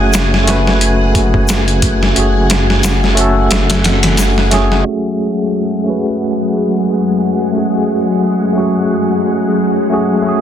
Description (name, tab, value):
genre	trip hop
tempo	89 BPM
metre	4/4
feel	swing 56% on 16ths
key	F# minor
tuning	A4 = 439 Hz
part	bright tine electric piano	accompaniment	0.0-10.4 s	A3 to B4	-15 LUFS	equal	medium stereo tremolo, vintage 12-bit sampler grit, low-pass filter, tape echo
part	string machine, cellos	sustained chords	0.0-10.4 s	F#3 to G#5	-17 LUFS	left 1 dB	phaser, ensemble chorus
part	dark detuned saw bass	bass	0.0-4.8 s	F#1	-14 LUFS	equal	none
part	dusty soul sampler-style drum kit	drums	0.1-4.9 s	hi-hat, kick drum, snare drum	-15 LUFS	equal	overdrive
part	tube shaker	percussion	0.1-4.3, 10.3-10.4 s	none	-26 LUFS	left 2 dB	none
part	bowed-like drone	texture	6.7-10.4 s	G#3 to G#4	-26 LUFS	left 2 dB	built-in reverb
room	light reverb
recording	dense, heavily limited modern master, low-pass filter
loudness	-11 LUFS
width	side -10 dB against mid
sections	0.0-4.9 A section; 4.9-10.4 B section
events	filter sweep on tine electric piano 4.9-10.4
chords	0.0 F#madd9